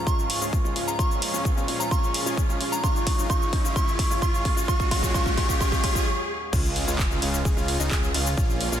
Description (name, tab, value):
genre	EDM, festival progressive house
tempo	130 BPM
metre	4/4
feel	straight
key	Db major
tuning	A4 = 438 Hz
part	soft synth bell	melody	0.0-6.0 s	Bb5 to Db6	-30 LUFS	right 1 dB	chorus, tape echo
part	lush unison pad	sustained chords	0.0-8.8 s	Db2 to F4	-35 LUFS	equal	chorus, sidechain pumping
part	riser and sub drop	sound effects	0.0-8.4 s	none	-34 LUFS	equal	none
part	dark grand piano	arpeggios	0.1-8.8 s	Eb4 to Ab4	-34 LUFS	right 1 dB	sidechain pumping, low-pass filter, tape echo
part	supersaw chords	riff	0.1-8.8 s	Ab3 to Ab4	-31 LUFS	equal	sidechain pumping, tape echo
part	big-room dance drum kit	drums	0.1-8.8 s	crash cymbal, handclaps, hi-hat, shaker	-30 LUFS	left 1 dB	none
part	electronic kick drum	drums	0.1-8.5 s	none	-24 LUFS	equal	none
part	detuned saw bass	bass	6.5-8.8 s	Bb1 to Db2	-28 LUFS	equal	sidechain pumping
room	light reverb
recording	dense, heavily limited modern master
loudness	-22 LUFS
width	side -10 dB against mid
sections	0.0-6.5 A section; 6.5-8.8 B section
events	build-up 0.0-6.5; drum fill 0.0-6.1; riser 0.0-6.1; filter sweep on supersaw synth 0.0-6.5; filter sweep on grand piano 0.0-6.5; stop 6.1-6.5; drop 6.5-8.8; impact 6.5-8.4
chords	0.0 Db; 1.0 Bbm; 2.8 Gb5; 4.7 Ebm; 6.5 Db